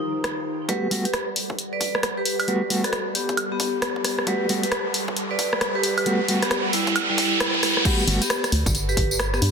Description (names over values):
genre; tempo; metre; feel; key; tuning
UK garage, two-step garage; 134 BPM; 4/4; swing 63% on 16ths; G major; A4 = 441 Hz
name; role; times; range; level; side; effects
vibraphone with medium hard mallets; melody; 0.0-9.4 s; G3 to D5; -27 LUFS; equal; ping-pong delay
soft string machine; sustained chords; 0.0-9.5 s; Eb3 to F#5; -33 LUFS; right 1 dB; ensemble chorus, sidechain pumping
mellow electric guitar; stabs; 0.0-8.2 s; Eb3 to F#4; -28 LUFS; equal; tremolo, low-pass filter, ping-pong delay
punchy analog drum machine; drums; 0.2-9.5 s; crash cymbal, hi-hat, rim click, tambourine, woodblock; -25 LUFS; equal; soft clipping on snare
electronic kick drum; drums; 0.7-9.1 s; none; -27 LUFS; equal; high-pass filter on kick, high-pass filter on room
riser; sound effects; 3.0-7.9 s; none; -27 LUFS; right 2 dB; none
organ-like FM bass; bass; 8.1-9.5 s; G1 to G2; -23 LUFS; equal; none
room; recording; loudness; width
moderate plate reverb, RT60 1.9 s, digital ambience; dense, heavily limited modern master; -20 LUFS; side -6 dB against mid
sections
0.7-7.9 A section; 7.9-9.5 B section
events
build-up 0.7-7.9; filter sweep on string machine 0.7-7.9; riser 3.0-7.9; drop 7.9-9.5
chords
0.0 Ebmaj9; 0.7 Gmaj9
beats
0.24 | 0.69 1.14 1.58 2.03 | 2.48 2.93 3.37 3.82 | 4.27 4.72 5.17 5.61 | 6.06 6.51 6.96 7.40 | 7.85 8.30 8.75 9.20